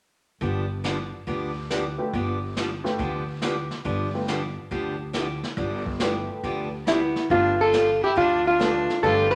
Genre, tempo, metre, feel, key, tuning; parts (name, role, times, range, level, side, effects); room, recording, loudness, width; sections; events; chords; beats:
country, western swing; 139 BPM; 4/4; swing 67% on 8ths; G mixolydian; A4 = 439 Hz
picked steel-string acoustic guitar; accompaniment; 0.4-9.3 s; D3 to G4; -32 LUFS; equal
upright bass; bass; 0.4-9.3 s; G1 to D2; -34 LUFS; equal
jazz brush drum kit; drums; 0.4-9.3 s; brushed snare drum, hi-hat, kick drum, snare drum; -35 LUFS; equal
honky-tonk upright piano; accompaniment; 2.0-9.3 s; A3 to A4; -33 LUFS; equal
vintage hollow-body jazz guitar; melody; 6.9-9.3 s; E4 to B4; -22 LUFS; equal
clear fiddle; second line; 6.9-9.3 s; B3 to F4; -31 LUFS; equal
wet large studio reverb, RT60 1.1 s; -25 LUFS; mono
0.4-7.3 A section; 7.3-9.3 B section
0.4 G9
| 0.41 0.84 1.28 1.71 | 2.14 2.57 3.00 3.43 | 3.86 4.29 4.72 5.15 | 5.58 6.01 6.44 6.87 | 7.30 7.74 8.17 8.60 | 9.03